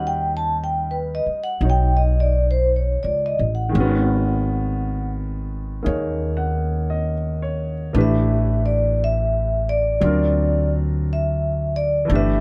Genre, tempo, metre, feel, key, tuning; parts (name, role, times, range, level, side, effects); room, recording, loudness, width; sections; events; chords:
jazz ballad; 57 BPM; 4/4; swing 66% on 8ths; A4 = 441 Hz
vibraphone with medium hard mallets; melody; 0.0-12.4 s; B4 to A5; -25 LUFS; equal
warm baby grand piano; accompaniment; 0.0-12.4 s; D#3 to F#5; -28 LUFS; equal
upright bass; bass; 0.0-12.4 s; G1 to D#2; -23 LUFS; equal
little or no reverb; -21 LUFS; mono
0.0-12.4 A section
vibraphone solo 0.0-12.4
0.0 D#7alt; 3.7 G#m11; 7.9 A5; 10.0 D7alt